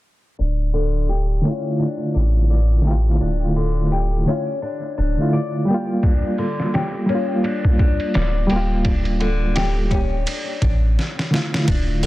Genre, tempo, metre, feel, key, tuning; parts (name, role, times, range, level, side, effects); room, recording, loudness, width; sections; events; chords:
trip hop; 85 BPM; 4/4; swing 58% on 16ths; D harmonic minor; A4 = 440 Hz
flamenco guitar; arpeggios; 0.4-12.1 s; D3 to D5; -26 LUFS; left 4 dB; low-pass filter, tape echo
soft dub sub bass; bass; 0.4-12.1 s; D1 to A1; -19 LUFS; equal
bright reed electric piano; accompaniment; 1.4-12.0 s; D3 to G4; -22 LUFS; right 1 dB; fast tremolo, low-pass filter, tape echo
trip hop sampler-style drum kit; drums; 6.0-12.1 s; hi-hat, kick drum, ride cymbal, snare drum; -21 LUFS; equal; small room reverb
little or no reverb; dense, heavily limited modern master, low-pass filter; -17 LUFS; side -17 dB against mid
0.4-11.7 A section
filter sweep on reed electric piano 0.4-11.7; filter sweep on nylon-string guitar 0.4-11.7; filter sweep 0.4-11.7; drum fill 11.0-11.7
0.4 Dmadd9